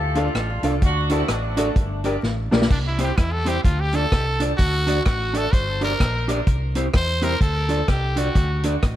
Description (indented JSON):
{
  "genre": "ska",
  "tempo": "127 BPM",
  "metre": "4/4",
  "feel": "swing 60% on 8ths",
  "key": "unclear",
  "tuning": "A4 = 440 Hz",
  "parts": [
    { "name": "mellow horn section", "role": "melody", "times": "0.0-2.0 s", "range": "A3 to A4", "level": "-28 LUFS", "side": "equal", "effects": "tape echo" },
    { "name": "hollow-body short-scale fingered electric bass", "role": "bass", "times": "0.0-9.0 s", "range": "G1 to E2", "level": "-24 LUFS", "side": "equal", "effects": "none" },
    { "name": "mellow electric guitar", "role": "accompaniment", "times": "0.2-8.7 s", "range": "C4 to D5", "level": "-27 LUFS", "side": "right 1 dB", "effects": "tremolo" },
    { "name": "honky-tonk upright piano", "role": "stabs", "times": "0.2-2.6 s", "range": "D4 to Bb4", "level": "-29 LUFS", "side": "left 3 dB", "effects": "none" },
    { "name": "vintage drum kit", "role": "drums", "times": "0.2-9.0 s", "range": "crash cymbal, hi-hat, kick drum, rim click, snare drum", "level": "-22 LUFS", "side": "equal", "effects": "none" },
    { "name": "growling trumpet", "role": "melody", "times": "2.7-8.6 s", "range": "D4 to C5", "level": "-25 LUFS", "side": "equal", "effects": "tape echo" }
  ],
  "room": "light reverb",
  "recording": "vinyl crackle",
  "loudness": "-18 LUFS",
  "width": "side -12 dB against mid",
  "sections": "0.0-2.7 A section; 2.7-9.0 B section",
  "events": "drum fill 2.2-2.7; trumpet solo 2.7-9.0",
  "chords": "0.0 Dm; 0.8 D; 1.8 Gm; 2.7 C; 3.6 Dm; 4.6 D; 5.5 Gm; 6.5 C; 7.4 Dm; 8.4 D",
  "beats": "0.35 | 0.82 1.29 1.76 2.23 | 2.70 3.17 3.65 4.12 | 4.59 5.06 5.53 6.00 | 6.47 6.94 7.41 7.88 | 8.36 8.83"
}